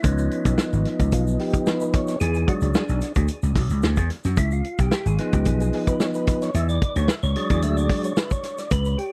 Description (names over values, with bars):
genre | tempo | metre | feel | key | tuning
funk | 111 BPM | 4/4 | straight | unclear | A4 = 440 Hz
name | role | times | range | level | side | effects
percussive tonewheel organ | stabs | 0.0-9.1 s | F3 to E5 | -28 LUFS | equal | overdrive, chorus vibrato, fast rotary speaker, tape echo
vintage slap bass | bass | 0.0-8.9 s | Ab1 to F#2 | -24 LUFS | equal | none
warm soul drum kit | drums | 0.0-9.1 s | hi-hat, kick drum, snare drum | -26 LUFS | equal | none
egg shaker | percussion | 0.0-9.0 s | none | -46 LUFS | equal | none
room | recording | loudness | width
studio reverb | dry, close 1970s-style studio recording | -22 LUFS | mono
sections
0.0-9.1 A section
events
tonewheel organ solo 0.0-9.1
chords
0.0 Db9; 2.2 E9; 4.4 Db9; 6.5 E9